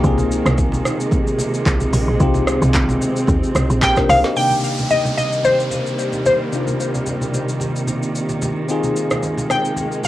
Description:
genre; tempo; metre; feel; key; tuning
amapiano; 111 BPM; 4/4; swing 55% on 16ths; C minor; A4 = 440 Hz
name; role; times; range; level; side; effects
bell-like tine electric piano; accompaniment; 0.0-10.1 s; C3 to Eb5; -23 LUFS; left 2 dB; phaser, cassette tape, plate reverb
warm studio string section; sustained chords; 0.0-10.1 s; C3 to C4; -23 LUFS; right 2 dB; sidechain pumping, cassette tape
woody log drum bass; bass; 0.0-4.2 s; Bb1 to Eb2; -19 LUFS; equal; none
afro-pop drum kit; drums; 0.0-10.1 s; handclaps, hi-hat, kick drum, rim click, shaker, snare drum; -21 LUFS; equal; overdrive
congas; percussion; 0.2-10.1 s; none; -27 LUFS; right 1 dB; none
glassy wavetable pluck; melody; 3.8-10.1 s; C5 to G5; -18 LUFS; left 1 dB; chorus, cassette tape, tape echo, plate reverb
downlifter; sound effects; 4.4-8.7 s; none; -31 LUFS; equal; none
room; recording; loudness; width
light reverb; home recording on cassette; -16 LUFS; side -14 dB against mid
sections
0.0-4.4 A section; 4.4-10.1 B section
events
drop 0.0-4.4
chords
0.0 Bb9sus4; 4.4 Cm7; 8.7 Bb9sus4/C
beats
| 0.04 0.58 1.12 1.66 | 2.20 2.74 3.28 3.82 | 4.36 4.91 5.45 5.99 | 6.53 7.07 7.61 8.15 | 8.69 9.23 9.77

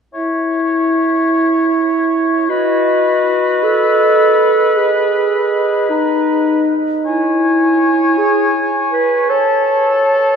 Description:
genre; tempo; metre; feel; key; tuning
cinematic, emotional film score for orchestra; 52 BPM (dotted quarters); 6/8; rubato; C# minor; A4 = 436 Hz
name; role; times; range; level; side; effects
concert flute; second line; 0.1-10.4 s; D#5 to A5; -20 LUFS; equal; none
warm clarinet; second line; 0.1-10.4 s; D#4 to C#5; -14 LUFS; right 1 dB; none
warm oboe; second line; 0.1-10.4 s; A4 to C#5; -18 LUFS; left 3 dB; none
room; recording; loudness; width
wet cathedral reverb, RT60 4.6 s; recorded in a church or concert hall; -12 LUFS; side -6 dB against mid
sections
0.1-10.4 A section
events
none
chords
0.1 C#m/E; 2.5 B/F#; 7.1 C#m/E; 9.3 N.C.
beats
| 0.14 1.31 | 2.49 3.63 | 4.76 5.91 | 7.05 8.19 | 9.30

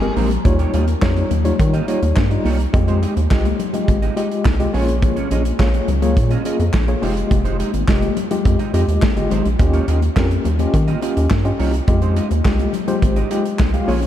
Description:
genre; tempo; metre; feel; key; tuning
early-eighties boogie funk; 105 BPM; 4/4; straight; unclear; A4 = 440 Hz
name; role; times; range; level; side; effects
tine electric piano; accompaniment; 0.0-14.1 s; G3 to F5; -22 LUFS; left 2 dB; medium tremolo
clean electric guitar; riff; 0.0-14.1 s; Ab3 to Eb5; -28 LUFS; right 6 dB; analog chorus
rubbery square bass; bass; 0.0-14.1 s; F1 to Eb3; -19 LUFS; equal; none
modern studio drum kit; drums; 0.0-14.1 s; handclaps, hi-hat, kick drum, snare drum; -20 LUFS; equal; none
congas; percussion; 0.2-14.0 s; none; -28 LUFS; left 10 dB; none
room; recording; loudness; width
light reverb, studio ambience; none; -15 LUFS; side -11 dB against mid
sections
0.5-14.1 A section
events
none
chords
0.5 Eb9; 2.7 Fm9; 4.7 Bbm7; 7.0 Fm9; 9.6 Eb9; 11.9 Fm9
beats
| 0.45 1.02 1.59 2.17 | 2.74 3.31 3.88 4.45 | 5.02 5.59 6.17 6.74 | 7.31 7.88 8.45 9.02 | 9.59 10.17 10.74 11.31 | 11.88 12.45 13.02 13.59

